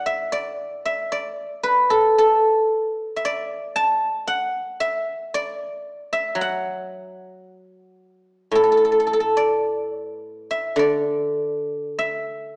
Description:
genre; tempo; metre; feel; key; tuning
chinese traditional, Chinese solo plucked strings; 49-58 BPM; 4/4; rubato; D gong mode; A4 = 440 Hz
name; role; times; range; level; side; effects
guzheng; solo; 0.0-12.6 s; A2 to A5; -22 LUFS; equal; none
room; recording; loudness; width
moderate recital hall reverb, RT60 1.6 s; small speaker sound; -22 LUFS; mono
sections
0.0-12.6 A section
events
none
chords
none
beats
| 0.07 1.12 2.18 3.24 | 4.28 5.33 6.38 7.45 | 8.55 9.66 10.79 11.98

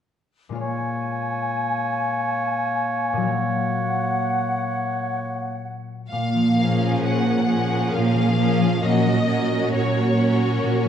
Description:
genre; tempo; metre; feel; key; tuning
cinematic, emotional film score for orchestra; 66 BPM; 3/4; rubato; Bb minor; A4 = 440 Hz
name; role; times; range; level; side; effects
concert harp; arpeggios; 0.5-10.9 s; Bb2 to Ab5; -27 LUFS; left 6 dB; none
flute section; second line; 0.6-5.8 s; Gb5 to Ab5; -27 LUFS; left 1 dB; none
warm clarinet; second line; 0.6-5.7 s; Bb3; -28 LUFS; left 1 dB; none
warm oboe; second line; 0.6-5.8 s; Db5; -29 LUFS; right 3 dB; none
clear symphonic violin section; melody; 6.1-10.9 s; Db5 to Gb5; -27 LUFS; left 2 dB; none
rich symphonic cello section; bass; 6.1-10.9 s; Bb2; -21 LUFS; right 3 dB; none
rich symphonic violin section; second line; 6.6-10.9 s; Gb4 to Bb4; -28 LUFS; left 3 dB; none
rich chamber viola section; accompaniment; 6.6-10.9 s; F3 to Db4; -26 LUFS; right 3 dB; none
room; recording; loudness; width
wet scoring stage reverb, RT60 1.6 s; dark, warm production; -20 LUFS; side -8 dB against mid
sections
0.6-6.1 A section; 6.1-10.9 B section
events
none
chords
0.6 Bbm7; 3.3 Gb/Bb; 6.1 Bbm7; 8.8 Gb/Bb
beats
| 0.60 1.52 2.42 | 3.32 4.22 5.17 | 6.12 7.04 7.93 | 8.83 9.74 10.63

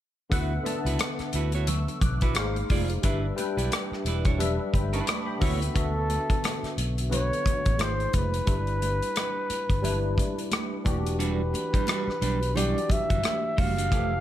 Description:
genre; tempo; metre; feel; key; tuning
lush 1970s-style soul; 88 BPM; 4/4; swing 58% on 16ths; D major; A4 = 440 Hz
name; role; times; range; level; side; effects
barky tine electric piano; accompaniment; 0.3-14.2 s; D3 to F#6; -32 LUFS; left 2 dB; overdrive, ensemble chorus
electric guitar at the edge of break-up; riff; 0.3-5.6, 11.2-14.1 s; G3 to D5; -34 LUFS; right 8 dB; none
fingered electric bass; bass; 0.3-14.2 s; E1 to D2; -28 LUFS; equal; none
modern studio drum kit; drums; 0.3-14.1 s; hi-hat, kick drum, rim click; -28 LUFS; equal; none
congas; percussion; 0.7-13.8 s; none; -38 LUFS; right 4 dB; none
breathy flugelhorn; melody; 5.8-14.2 s; A4 to F5; -30 LUFS; equal; none
room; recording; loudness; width
small room reverb; none; -24 LUFS; side -12 dB against mid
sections
0.3-5.8 A section; 5.8-14.2 B section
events
none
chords
0.3 D69; 2.4 G#6; 3.0 G6; 5.4 D69; 7.8 G#6; 8.5 G6; 10.9 Em9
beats
| 0.31 0.99 1.68 2.36 | 3.04 3.72 4.40 5.08 | 5.76 6.44 7.12 7.80 | 8.48 9.16 9.84 10.52 | 11.20 11.88 12.56 13.24 | 13.92

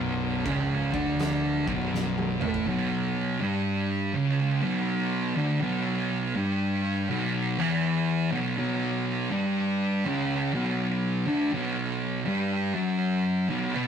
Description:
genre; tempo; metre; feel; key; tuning
stoner and doom metal; 81 BPM; 4/4; swing 65% on 8ths; B minor; A4 = 440 Hz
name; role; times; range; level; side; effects
thick fuzz guitar; riff; 0.0-13.9 s; B1 to B3; -29 LUFS; left 5 dB; distortion
thick fuzz guitar; riff; 0.0-13.9 s; B1 to B3; -27 LUFS; right 5 dB; distortion
fuzz picked electric bass; bass; 0.0-2.6 s; B0 to A1; -37 LUFS; left 1 dB; overdrive
oversized low-tuned drum kit; drums; 0.5-2.7 s; crash cymbal, kick drum, snare drum, toms; -35 LUFS; left 1 dB; none
room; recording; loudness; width
moderate studio reverb, RT60 0.7 s; rough rehearsal-room recording; -25 LUFS; side -8 dB against mid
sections
0.0-2.7 A section; 2.7-13.9 B section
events
drum fill 1.9-2.7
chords
0.0 Bm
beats
0.45 1.19 1.93 | 2.67 3.40 4.14 4.88 | 5.62 6.36 7.10 7.83 | 8.57 9.31 10.05 10.79 | 11.53 12.27 13.01 13.75

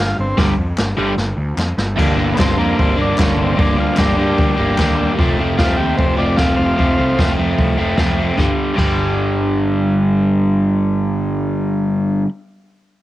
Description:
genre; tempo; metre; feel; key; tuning
garage rock duo or trio; 150 BPM; 4/4; straight; G minor; A4 = 440 Hz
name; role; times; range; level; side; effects
overdriven combo organ; melody; 0.0-7.3 s; Bb3 to F5; -22 LUFS; equal; cassette tape
fuzz picked electric bass; bass; 0.0-12.2 s; F1 to G2; -22 LUFS; equal; overdrive
overdriven electric guitar; riff; 0.4-12.3 s; F2 to D4; -16 LUFS; equal; none
jazz brush drum kit; drums; 0.4-8.9 s; crash cymbal, hi-hat, kick drum, snare drum; -19 LUFS; equal; cassette tape
group handclap; percussion; 0.8-4.9 s; none; -30 LUFS; left 3 dB; none
room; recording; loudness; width
light reverb; home recording on cassette; -14 LUFS; side -15 dB against mid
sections
0.0-2.0 A section; 2.0-8.4 B section; 8.4-11.6 C section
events
drum fill 1.2-2.0; transistor combo organ solo 2.0-8.4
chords
0.0 G5; 2.0 Gm; 5.2 F; 8.4 G5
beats
| 0.37 0.77 1.17 1.57 | 1.97 2.37 2.77 3.17 | 3.57 3.97 4.37 4.77 | 5.17 5.57 5.96 6.36 | 6.76 7.16 7.56 7.96 | 8.36 8.76 9.16 9.56 | 9.96 10.36 10.76 11.16

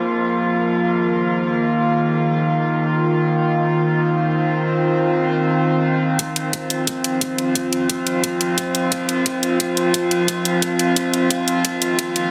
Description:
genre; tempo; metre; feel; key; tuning
dark technical drum and bass; 176 BPM; 4/4; straight; unclear; A4 = 440 Hz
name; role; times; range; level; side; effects
metallic inharmonic drone; sustained chords; 0.0-12.3 s; Eb3 to F4; -20 LUFS; equal; chorus, built-in reverb, vintage 12-bit sampler grit, sidechain pumping
electronic hi-hat; drums; 6.2-12.2 s; none; -24 LUFS; equal; overdrive, studio reverb
electronic kick drum; drums; 6.2-12.1 s; none; -36 LUFS; equal; none
room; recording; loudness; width
wet huge ambient reverb, RT60 7.4 s; dreamy mix soaked in reverb, high-pass filter, faint mains hum; -19 LUFS; mono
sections
0.0-6.2 A section; 6.2-12.3 B section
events
build-up 6.2-12.3; drum fill 11.6-12.3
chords
0.0 F5; 0.7 Eb5; 6.2 F5; 11.6 Eb5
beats
0.06 0.40 | 0.74 1.08 1.42 1.76 | 2.10 2.44 2.78 3.12 | 3.46 3.81 4.15 4.49 | 4.83 5.17 5.51 5.85 | 6.19 6.53 6.87 7.21 | 7.55 7.90 8.24 8.58 | 8.92 9.26 9.60 9.94 | 10.28 10.62 10.96 11.30 | 11.65 11.99

